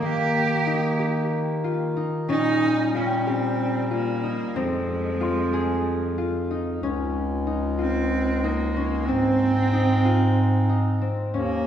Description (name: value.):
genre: contemporary instrumental, chamber music in an uneven meter.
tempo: 186 BPM (eighths).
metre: 7/8.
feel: straight.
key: unclear.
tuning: A4 = 440 Hz.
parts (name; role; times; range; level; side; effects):
rich cello; melody; 0.0-11.7 s; Ab3 to G4; -27 LUFS; right 4 dB; none.
clear clarinet; second line; 0.0-11.7 s; F3 to C4; -29 LUFS; right 3 dB; none.
concert harp; arpeggios; 0.0-11.7 s; Bb3 to Ab4; -28 LUFS; left 5 dB; none.
clear bass clarinet; bass; 0.0-11.7 s; Db2 to Eb3; -25 LUFS; equal; none.
celesta; texture; 0.0-7.1 s; F5 to C6; -35 LUFS; equal; none.
room: wet concert hall reverb, RT60 2.2 s.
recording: heard from further back in the room.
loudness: -21 LUFS.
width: side -9 dB against mid.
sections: 0.0-6.8 A section; 6.8-11.7 B section.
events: none.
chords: 0.0 Ebadd9; 2.3 Bbm; 4.6 Fm; 6.8 Db6; 9.1 Ab.